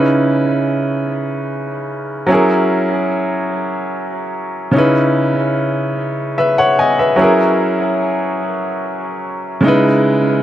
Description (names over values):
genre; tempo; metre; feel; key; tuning
R&B; 49 BPM (dotted quarters); 6/8; straight; C# dorian; A4 = 441 Hz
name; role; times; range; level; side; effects
clear baby grand piano; solo; 0.0-10.4 s; C#3 to G#5; -14 LUFS; equal; tape echo
room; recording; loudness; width
moderate spring reverb, RT60 2.0 s, studio ambience; echo-heavy mix; -14 LUFS; side -12 dB against mid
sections
0.0-9.6 A section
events
none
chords
0.0 C#m7; 2.3 F#7; 4.7 C#m7; 7.2 F#7; 9.6 C#m9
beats
1.07 | 2.29 3.52 | 4.74 5.97 | 7.19 8.42 | 9.64